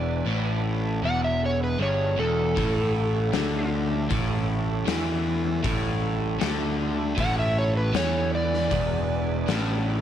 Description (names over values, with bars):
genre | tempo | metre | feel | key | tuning
blues rock power trio and southern rock | 78 BPM | 4/4 | straight | unclear | A4 = 440 Hz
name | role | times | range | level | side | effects
overdriven slide guitar | melody | 0.0-9.8 s | A4 to F#5 | -28 LUFS | right 1 dB | none
dark smooth lead guitar | second line | 0.0-9.8 s | E4 to D5 | -39 LUFS | right 13 dB | overdrive
overdriven tonewheel organ | sustained chords | 0.0-10.0 s | G3 to G#5 | -38 LUFS | right 11 dB | slow rotary speaker, chorus vibrato
crunchy overdriven guitar | riff | 0.0-10.0 s | E2 to E3 | -28 LUFS | equal | none
fuzz picked electric bass | bass | 0.0-10.0 s | E1 to E2 | -27 LUFS | equal | overdrive
oversized low-tuned drum kit | drums | 2.6-9.7 s | hi-hat, kick drum, snare drum | -31 LUFS | left 4 dB | none
room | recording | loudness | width
light reverb, small room ambience | 1960s-style stereo | -22 LUFS | side -10 dB against mid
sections
0.0-10.0 A section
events
none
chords
0.0 E7; 2.6 A7; 8.7 E7